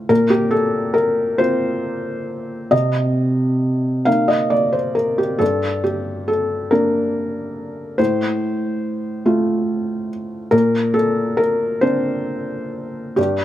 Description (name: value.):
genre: neoclassical minimalist piano.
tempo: 46 BPM (dotted quarters).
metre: 6/8.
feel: rubato.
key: unclear.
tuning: A4 = 435 Hz.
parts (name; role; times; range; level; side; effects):
felt-muted upright piano; solo; 0.0-13.4 s; G2 to F5; -17 LUFS; equal; none.
room: light reverb.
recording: none.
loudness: -17 LUFS.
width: side -12 dB against mid.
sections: 0.0-13.4 A section.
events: none.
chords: 0.1 Bbsus2; 2.7 Cm7; 5.4 Gm; 8.0 F/A; 10.5 Bbadd9.